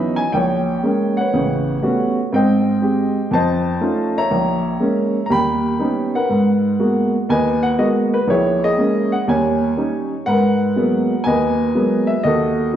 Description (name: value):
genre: solo jazz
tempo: 121 BPM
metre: 4/4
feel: swing 68% on 8ths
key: G# minor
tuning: A4 = 440 Hz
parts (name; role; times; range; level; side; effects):
- warm upright piano; solo; 0.0-12.8 s; A1 to B5; -15 LUFS; equal; none
room: wet large studio reverb, RT60 1.4 s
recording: heard from further back in the room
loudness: -15 LUFS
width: side -10 dB against mid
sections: 0.0-10.3 A section; 10.3-12.8 A section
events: none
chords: 0.3 A#m7; 1.3 A13; 2.3 G#maj7; 3.3 F7b13; 4.3 A#m7b5; 5.3 D#7b13; 6.3 G#m9; 8.3 A#m7b5; 9.3 D#7; 10.3 G#m9; 12.2 D#dim